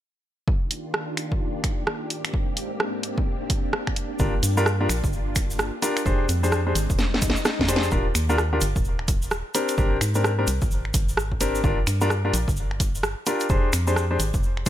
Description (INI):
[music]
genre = UK garage, two-step garage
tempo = 129 BPM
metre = 4/4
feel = swing 61% on 16ths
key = unclear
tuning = A4 = 440 Hz
[part]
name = soft string machine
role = sustained chords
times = 0.5-7.9 s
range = Ab2 to G4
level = -33 LUFS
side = equal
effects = ensemble chorus, sidechain pumping
[part]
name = electronic kick drum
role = drums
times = 0.5-14.7 s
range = none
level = -24 LUFS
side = equal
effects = none
[part]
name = garage drum kit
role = drums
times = 0.7-14.7 s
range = finger snaps, hi-hat, rim click, snare drum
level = -26 LUFS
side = right 1 dB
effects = none
[part]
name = clear grand piano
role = stabs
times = 4.2-14.7 s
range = C4 to C5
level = -26 LUFS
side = left 1 dB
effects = dub echo
[part]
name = organ-like FM bass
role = bass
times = 4.2-14.7 s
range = Eb1 to Ab2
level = -25 LUFS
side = equal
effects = sidechain pumping
[part]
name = tube shaker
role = percussion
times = 4.2-14.7 s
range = none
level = -33 LUFS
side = equal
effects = none
[part]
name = swell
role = sound effects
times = 7.1-7.9 s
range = none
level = -33 LUFS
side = left 4 dB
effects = none
[sound]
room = digital ambience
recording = none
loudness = -21 LUFS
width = side -12 dB against mid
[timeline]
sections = 0.5-7.9 A section; 7.9-14.7 B section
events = drum fill 7.0-7.9; swell 7.1-7.9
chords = 0.5 Ebmaj7; 2.1 Abmaj9#11; 4.2 Gm7; 6.1 Fm69; 7.9 Ebmaj7; 9.5 Abmaj9#11; 11.6 Gm7; 13.5 Fm69